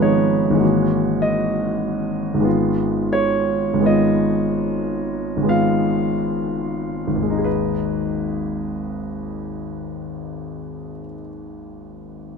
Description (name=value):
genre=classical, impressionist solo piano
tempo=29-52 BPM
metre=3/4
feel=rubato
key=G# minor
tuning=A4 = 440 Hz
part: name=clear concert grand piano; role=solo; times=0.0-12.4 s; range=G#1 to E#5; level=-19 LUFS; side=equal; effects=none
room=moderate studio reverb, RT60 0.5 s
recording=minimal, uncompressed stereo recording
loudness=-18 LUFS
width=side -5 dB against mid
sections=0.0-7.4 A section; 7.4-12.4 B section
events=slowing down 0.0-7.4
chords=0.0 G#m6; 0.6 F#9/G#; 2.4 G#m6; 7.4 G#m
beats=0.03 1.20 | 2.45 3.85 5.49 | 7.44 9.37 11.26